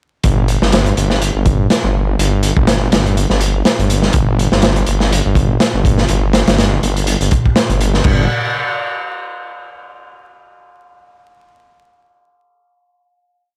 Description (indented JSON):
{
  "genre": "breakbeat, breaks",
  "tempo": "123 BPM",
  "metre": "4/4",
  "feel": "swing 56% on 16ths",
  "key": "unclear",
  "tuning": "A4 = 440 Hz",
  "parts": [
    { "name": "detuned saw bass", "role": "bass", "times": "0.2-8.3 s", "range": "G1", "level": "-17 LUFS", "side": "equal", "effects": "none" },
    { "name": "crunchy breakbeat drum kit", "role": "drums", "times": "0.2-8.2 s", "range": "crash cymbal, hi-hat, kick drum, snare drum", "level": "-17 LUFS", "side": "equal", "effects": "none" }
  ],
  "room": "little or no reverb",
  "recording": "vinyl crackle",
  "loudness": "-14 LUFS",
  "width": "mono",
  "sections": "0.2-8.0 drop; 8.0-10.0 final note",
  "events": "drop 0.2-8.0",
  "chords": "none"
}